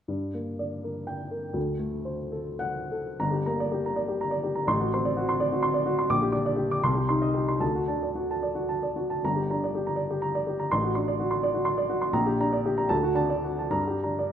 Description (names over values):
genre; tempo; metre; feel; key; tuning
classical, romantic character piece for solo piano; 65-88 BPM (dotted quarters); 6/8; rubato; G minor; A4 = 439 Hz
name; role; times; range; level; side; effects
warm upright piano; solo; 0.1-14.3 s; G1 to D6; -25 LUFS; equal; none
room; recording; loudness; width
moderate recital hall reverb, RT60 1.5 s; none; -25 LUFS; side -9 dB against mid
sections
0.1-3.2 A section; 3.2-14.3 B section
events
none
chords
0.1 Gm; 1.6 D7; 3.2 Gm; 4.7 D7/A; 6.1 Gm/Bb; 6.8 Cm; 7.6 D; 9.2 Gm; 10.7 D7/A; 12.1 Gm/Bb; 12.9 D; 13.7 Gm